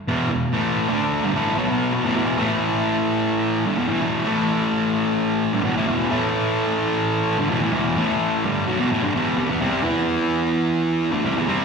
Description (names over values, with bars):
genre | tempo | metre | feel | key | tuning
rock | 129 BPM | 4/4 | straight | E minor | A4 = 440 Hz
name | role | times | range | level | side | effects
fuzz guitar | solo | 0.1-11.6 s | E2 to E4 | -19 LUFS | equal | distortion, slapback echo
room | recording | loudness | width
light reverb, digital ambience | live gig heard through the venue's PA, recital hall reverb | -19 LUFS | side -5 dB against mid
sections
0.0-1.9 A section; 1.9-11.6 B section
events
none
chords
0.0 E5; 2.4 A5; 3.7 Em; 4.3 A5; 5.5 Em; 6.1 A5; 7.4 Em; 8.0 A5; 8.4 Em; 9.4 C5; 9.8 E5; 11.1 C5